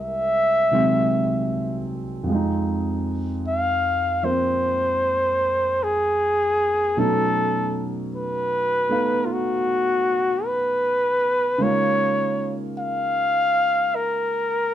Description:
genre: jazz ballad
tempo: 51 BPM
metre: 4/4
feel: swing 66% on 8ths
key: unclear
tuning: A4 = 441 Hz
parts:
  - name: warm flugelhorn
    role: melody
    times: 0.0-14.7 s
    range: F4 to F5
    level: -20 LUFS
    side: left 1 dB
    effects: none
  - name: warm grand piano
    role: accompaniment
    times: 0.0-14.7 s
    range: C2 to F5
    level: -26 LUFS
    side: right 1 dB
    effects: none
room: moderate studio reverb, RT60 0.7 s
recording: faint mains hum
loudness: -20 LUFS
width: side -11 dB against mid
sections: 0.0-14.7 A section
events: none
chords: 0.0 C7alt; 2.3 Fm7; 7.0 Cb9; 11.6 Db6

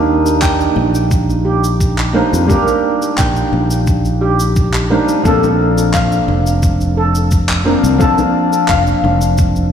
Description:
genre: sunset chillout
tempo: 87 BPM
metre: 4/4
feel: straight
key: Bb major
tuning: A4 = 440 Hz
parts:
  - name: nylon-string guitar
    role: accompaniment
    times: 0.0-9.7 s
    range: F3 to A5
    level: -15 LUFS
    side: moving between left 2 dB and right 4 dB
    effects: auto-pan, tape echo
  - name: steel pan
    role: arpeggios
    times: 0.0-9.0 s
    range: G4 to G5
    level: -20 LUFS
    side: right 1 dB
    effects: tape echo
  - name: fretless electric bass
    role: bass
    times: 0.0-9.7 s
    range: F1 to F2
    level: -16 LUFS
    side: left 1 dB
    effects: none
  - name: electronic shaker and handclaps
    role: drums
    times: 0.3-9.7 s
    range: none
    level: -24 LUFS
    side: equal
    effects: none
  - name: electronic kick drum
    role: drums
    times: 0.4-9.5 s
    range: none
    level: -16 LUFS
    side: equal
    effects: none
  - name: bongos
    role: percussion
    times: 0.8-9.2 s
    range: none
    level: -24 LUFS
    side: left 8 dB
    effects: none
room: moderate lush hall reverb, RT60 2.4 s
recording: played on a big sound system in a bare room, stone room reverb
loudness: -11 LUFS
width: side -8 dB against mid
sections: 0.0-9.7 A section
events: none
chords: 0.0 Ebmaj7; 5.2 Bbmaj9

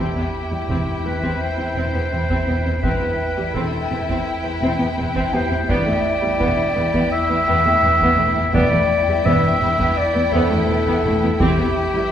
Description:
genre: cinematic, suspense film score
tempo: 84 BPM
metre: 4/4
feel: straight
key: unclear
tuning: A4 = 438 Hz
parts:
  - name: warm symphonic violin section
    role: melody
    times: 0.0-12.1 s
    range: G5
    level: -30 LUFS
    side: left 3 dB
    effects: none
  - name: rich symphonic violin section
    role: second line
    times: 0.0-12.1 s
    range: E4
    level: -27 LUFS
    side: left 2 dB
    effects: none
  - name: warm clarinet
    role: second line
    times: 0.0-12.1 s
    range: G4 to E5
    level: -20 LUFS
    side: left 1 dB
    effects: none
  - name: rich symphonic viola section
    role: accompaniment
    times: 0.0-12.0 s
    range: G3 to C4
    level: -24 LUFS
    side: equal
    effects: none
  - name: dark symphonic cello section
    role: bass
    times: 0.0-12.0 s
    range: E2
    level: -26 LUFS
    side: right 1 dB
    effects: none
  - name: dark symphonic double bass section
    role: bass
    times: 0.0-11.5 s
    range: E1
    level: -26 LUFS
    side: right 2 dB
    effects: none
  - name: swarming drone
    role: drone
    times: 0.0-12.1 s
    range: E2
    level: -28 LUFS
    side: equal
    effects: built-in reverb
  - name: felt-muted upright piano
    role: texture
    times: 0.0-12.1 s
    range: G4 to A5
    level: -31 LUFS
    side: left 1 dB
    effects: none
  - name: taiko ensemble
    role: drums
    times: 0.7-12.1 s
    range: none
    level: -28 LUFS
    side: equal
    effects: none
room: wet recital hall reverb, RT60 1.4 s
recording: recorded in a church or concert hall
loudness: -16 LUFS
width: side -9 dB against mid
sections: 0.0-12.1 A section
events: none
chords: 0.0 C/E

